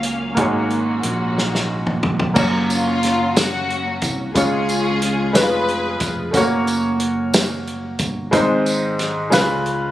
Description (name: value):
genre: slow gospel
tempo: 60 BPM (dotted quarters)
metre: 6/8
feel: straight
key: unclear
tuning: A4 = 440 Hz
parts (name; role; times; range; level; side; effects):
- clear grand piano; accompaniment; 0.0-9.9 s; Ab2 to Db5; -19 LUFS; equal; none
- warm symphonic string section; sustained chords; 0.0-2.3 s; Gb3 to F5; -28 LUFS; equal; none
- fingered electric bass; bass; 0.0-9.9 s; F1 to Db2; -26 LUFS; equal; none
- warm soul drum kit; drums; 0.0-9.8 s; crash cymbal, hi-hat, kick drum, snare drum, toms; -21 LUFS; equal; none
- warm studio string section; melody; 2.4-6.3 s; Bb3 to Cb5; -22 LUFS; left 1 dB; none
- tambourine; percussion; 2.4-9.6 s; none; -27 LUFS; right 1 dB; none
room: light reverb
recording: recorded on a phone in the room, club reverb, compression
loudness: -16 LUFS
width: side -14 dB against mid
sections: 0.0-2.4 A section; 2.4-9.9 B section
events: drum fill 1.4-2.4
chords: 0.4 Ab9sus4; 2.4 Gb; 4.4 Db; 5.3 Db7/F; 6.3 Gb; 8.3 Ab; 9.3 Db7